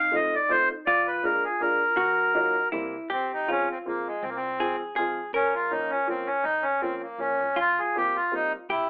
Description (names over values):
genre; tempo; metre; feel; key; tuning
musette waltz; 162 BPM; 3/4; swing 53% on 8ths, rubato; Eb minor, F minor from 3.1 s; A4 = 439 Hz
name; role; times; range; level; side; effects
accordion; melody; 0.0-8.9 s; Ab3 to F5; -26 LUFS; equal; none
hollow-body jazz guitar; second line; 0.0-8.9 s; Eb4 to Bb4; -34 LUFS; equal; none
upright bass; bass; 0.0-8.9 s; Bb1 to F2; -50 LUFS; equal; none
dark upright piano; accompaniment; 0.1-8.5 s; F3 to F4; -34 LUFS; equal; none
room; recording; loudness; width
moderate small room reverb, RT60 0.5 s; telephone sound; -26 LUFS; mono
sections
0.0-3.1 A section; 3.1-8.9 B section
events
none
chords
0.0 F7; 0.9 Bb7; 2.0 Ebmadd9; 2.7 C7; 3.1 Fm; 5.3 Bbm; 7.6 C7sus4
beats
0.14 0.51 | 0.88 1.24 1.60 | 1.97 2.34 2.72 | 3.10 3.48 3.86 | 4.24 4.61 4.97 | 5.34 5.71 6.08 | 6.44 6.82 7.19 | 7.58 7.96 8.33 | 8.71